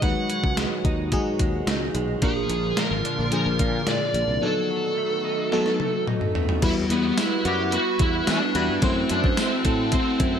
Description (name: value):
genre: 1980s-style pop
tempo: 109 BPM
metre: 4/4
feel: straight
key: E minor from 6.6 s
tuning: A4 = 437 Hz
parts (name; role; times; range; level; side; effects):
- smooth overdriven lead guitar; melody; 0.0-10.4 s; B3 to F#5; -25 LUFS; right 1 dB; none
- FM electric piano; accompaniment; 0.0-10.4 s; F3 to Db5; -28 LUFS; left 3 dB; chorus
- phased analog pad; sustained chords; 0.0-10.4 s; Bb2 to F#5; -32 LUFS; equal; phaser, chorus
- direct-recorded clean electric guitar; riff; 0.0-10.4 s; E3 to A4; -32 LUFS; right 4 dB; analog chorus
- sustaining fretless electric bass; bass; 0.0-10.4 s; Ab1 to E3; -28 LUFS; equal; none
- gated 80s digital drum machine; drums; 0.0-10.3 s; crash cymbal, hi-hat, kick drum, snare drum, tambourine, toms; -26 LUFS; equal; gated reverb, gated reverb snare, overdrive
- clear horn section; stabs; 7.5-8.7 s; G3 to B4; -34 LUFS; left 3 dB; none
room: light reverb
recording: none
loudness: -21 LUFS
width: side -8 dB against mid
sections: 0.0-6.6 A section; 6.6-10.4 B section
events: drum fill 5.5-6.6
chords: 0.0 B6; 2.2 Bb; 4.4 B7; 6.6 Emadd9; 8.8 F#m7b5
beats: | 0.02 0.57 1.12 1.67 | 2.23 2.77 3.33 3.88 | 4.43 4.98 5.53 6.08 | 6.63 7.18 7.73 8.28 | 8.83 9.38 9.93